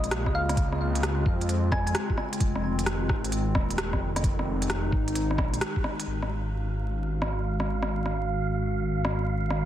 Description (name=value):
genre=future garage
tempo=131 BPM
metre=4/4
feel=swing 66% on 16ths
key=unclear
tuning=A4 = 440 Hz
part: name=warbly tape-like pad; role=sustained chords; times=0.0-9.7 s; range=Db3 to Gb4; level=-31 LUFS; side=left 1 dB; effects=chorus, built-in reverb, sidechain pumping
part: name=swelling detuned saw bass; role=bass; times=0.0-9.7 s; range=Eb1 to F2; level=-29 LUFS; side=equal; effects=sidechain pumping
part: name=organic electronic drum kit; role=drums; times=0.0-9.6 s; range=hi-hat, rim click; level=-32 LUFS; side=equal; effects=soft clipping on snare
part: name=thumb-piano-like synth pluck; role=melody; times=0.3-1.9 s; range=F5 to Ab5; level=-35 LUFS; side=equal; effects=chorus, cassette tape, digital delay
part: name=electronic kick drum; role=drums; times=0.3-5.8 s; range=none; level=-28 LUFS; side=equal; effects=none
part: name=wind-like tuned noise texture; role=texture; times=6.6-9.7 s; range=F5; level=-36 LUFS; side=right 8 dB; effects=built-in reverb
room=little or no reverb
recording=dense, heavily limited modern master, vinyl crackle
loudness=-25 LUFS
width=side -12 dB against mid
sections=0.0-6.1 A section; 6.1-9.7 B section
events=band accent 5.6; filter sweep on ambient pad 6.1-9.7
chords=0.0 Db6; 2.4 Fm7; 6.1 Ab7sus4